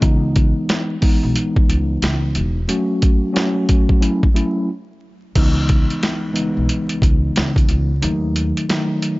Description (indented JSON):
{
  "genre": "hip hop, boom-bap hip-hop",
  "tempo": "90 BPM",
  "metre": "4/4",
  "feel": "swing 62% on 16ths",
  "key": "C# minor",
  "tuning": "A4 = 441 Hz",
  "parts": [
    { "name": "mellow tine electric piano", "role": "accompaniment", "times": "0.0-9.2 s", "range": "C#2 to F#4", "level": "-20 LUFS", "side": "equal", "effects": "fast stereo tremolo, cassette tape, high-pass filter, low-pass filter" },
    { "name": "upright bass", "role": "bass", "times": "0.0-8.5 s", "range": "E1 to D#2", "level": "-20 LUFS", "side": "equal", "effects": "none" },
    { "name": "boom bap sampler-style drum kit", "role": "drums", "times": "0.0-9.2 s", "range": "crash cymbal, hi-hat, kick drum, snare drum", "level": "-17 LUFS", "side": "equal", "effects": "overdrive" }
  ],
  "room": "digital ambience",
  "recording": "vinyl crackle, nothing above 7.6 kHz",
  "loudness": "-15 LUFS",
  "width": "side -21 dB against mid",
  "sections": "0.0-5.4 A section; 5.4-9.2 B section",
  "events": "break 4.7-5.4",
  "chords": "0.0 C#m7; 2.7 F#m; 4.0 F#m7; 5.4 C#m7; 8.0 D#dim"
}